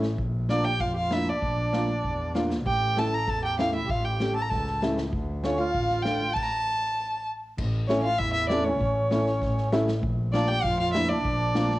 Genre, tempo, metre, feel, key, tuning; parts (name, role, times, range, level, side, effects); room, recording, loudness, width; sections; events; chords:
klezmer; 98 BPM; 2/4; straight; A phrygian dominant; A4 = 440 Hz
dark upright piano; accompaniment; 0.0-11.7 s; A3 to G4; -28 LUFS; equal
warm double bass; bass; 0.0-11.6 s; A1 to F2; -29 LUFS; equal
street-band drum kit; drums; 0.0-11.8 s; crash cymbal, kick drum, snare drum; -33 LUFS; equal; cassette tape
clear violin; melody; 0.5-11.8 s; C#5 to Bb5; -28 LUFS; equal; cassette tape
mellow accordion; second line; 0.5-11.8 s; C#4 to A4; -32 LUFS; right 3 dB
moderate spring reverb, RT60 1.3 s, small room ambience; home recording on cassette; -24 LUFS; side -16 dB against mid
0.0-7.6 A section; 7.6-11.8 A section
stop 6.4-7.6
0.2 Bb; 2.7 A; 5.1 Dm; 6.4 N.C.; 7.6 A; 10.0 Bb